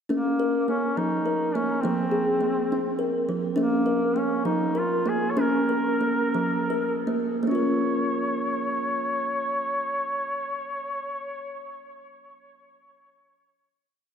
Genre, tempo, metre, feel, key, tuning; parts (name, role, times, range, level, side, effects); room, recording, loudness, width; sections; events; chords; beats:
world meditative, meditative tuned percussion; 52-69 BPM (dotted quarters); 6/8; straight; Bb minor; A4 = 442 Hz
clear duduk; melody; 0.1-11.7 s; Bb3 to Db5; -28 LUFS; equal; tape echo
kalimba; arpeggios; 0.1-11.8 s; F3 to Bb4; -24 LUFS; equal
wet lush hall reverb, RT60 2.5 s; dreamy mix soaked in reverb; -23 LUFS; side -7 dB against mid
0.1-7.5 A section; 7.5-12.1 final chord
slowing down 3.6-7.5
0.1 Bbm; 1.8 Fm; 3.6 Bbm
| 0.11 0.97 | 1.84 2.71 | 3.58 4.46 | 5.38 6.36 | 7.45 8.61 | 9.76 10.91